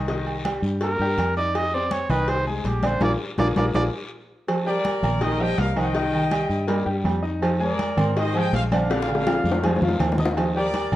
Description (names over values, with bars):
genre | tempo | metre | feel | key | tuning
latin, salsa | 163 BPM | 4/4 | straight | Eb major | A4 = 441 Hz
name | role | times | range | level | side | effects
bright grand piano | accompaniment | 0.0-11.0 s | D3 to Eb6 | -27 LUFS | left 2 dB | none
fingered electric bass | bass | 0.0-11.0 s | Bb1 to Ab2 | -26 LUFS | equal | none
congas | percussion | 0.1-11.0 s | none | -30 LUFS | left 1 dB | none
cowbell and bongos | percussion | 0.1-10.9 s | none | -30 LUFS | left 3 dB | none
guiro | percussion | 0.1-11.0 s | none | -42 LUFS | left 4 dB | none
agogo bells and timbales | percussion | 0.3-11.0 s | none | -31 LUFS | right 5 dB | none
warm trumpet | melody | 0.8-3.8 s | Eb4 to Eb5 | -26 LUFS | right 1 dB | none
mellow bass clarinet | second line | 4.5-11.0 s | D3 to G3 | -27 LUFS | right 2 dB | none
bright trumpet section | melody | 4.7-11.0 s | Bb4 to G5 | -27 LUFS | equal | none
room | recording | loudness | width
moderate large studio reverb, RT60 1.1 s | worn, warbling old tape, cassette tape, warbly pitch drift | -20 LUFS | side -14 dB against mid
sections
0.0-4.5 A section; 4.5-11.0 B section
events
trumpet solo 0.0-4.5; band accent 3.0-4.5; drum fill 3.8-4.5, 8.9-10.4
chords
0.1 Cm7; 1.6 Fm7; 3.0 Bb7; 4.5 Ebadd9; 6.0 Cm7; 7.4 Fm7; 8.9 Bb7; 10.4 Ebadd9